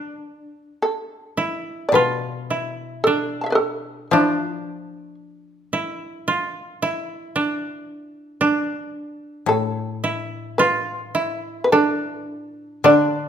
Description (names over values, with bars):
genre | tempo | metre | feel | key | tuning
japanese traditional | 52-57 BPM | 4/4 | rubato | D kumoi | A4 = 442 Hz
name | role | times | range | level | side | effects
koto | second line | 0.0-13.3 s | D4 to F4 | -23 LUFS | right 2 dB | none
shamisen | melody | 0.8-13.3 s | F4 to A5 | -19 LUFS | equal | none
koto | accompaniment | 1.9-13.3 s | A2 to F3 | -25 LUFS | left 8 dB | none
room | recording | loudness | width
moderate recital hall reverb, RT60 1.3 s | minimal, uncompressed stereo recording | -19 LUFS | side -8 dB against mid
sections
0.0-13.3 A section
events
none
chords
none